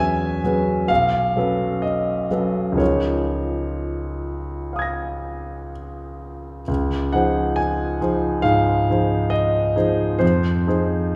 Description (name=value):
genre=classical, impressionist solo piano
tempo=60-70 BPM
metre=4/4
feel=rubato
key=Db major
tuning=A4 = 440 Hz
part: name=warm grand piano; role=solo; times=0.0-11.2 s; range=Cb2 to Bb6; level=-21 LUFS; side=equal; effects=none
room=wet recital hall reverb, RT60 1.4 s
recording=recorded in a church or concert hall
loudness=-21 LUFS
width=mono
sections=0.0-6.7 A section; 6.7-11.2 A section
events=none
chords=0.0 E69; 0.9 Cb9; 2.8 Db69; 6.7 Dbmaj9; 10.2 Fm7